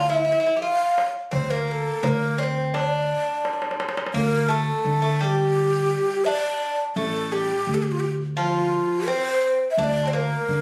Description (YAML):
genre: Turkish makam ensemble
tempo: 85 BPM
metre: 4/4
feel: straight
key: D makam ussak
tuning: A4 = 441 Hz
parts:
  - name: breathy mellow ney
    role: melody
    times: 0.0-10.6 s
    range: F4 to F5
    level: -26 LUFS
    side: equal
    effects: plate reverb
  - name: Greek bouzouki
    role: second line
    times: 0.0-10.6 s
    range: F3 to G4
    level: -30 LUFS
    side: equal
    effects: none
  - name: upright bass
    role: bass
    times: 0.0-10.6 s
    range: A1 to D3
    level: -28 LUFS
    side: equal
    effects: none
  - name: darbuka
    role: percussion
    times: 0.5-4.1 s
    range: none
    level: -32 LUFS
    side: equal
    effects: none
room: moderate studio reverb, RT60 0.6 s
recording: recorded on a phone in the room, studio reverb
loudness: -23 LUFS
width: mono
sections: 0.0-4.1 A section; 4.1-10.6 B section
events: drum fill 3.4-4.1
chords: none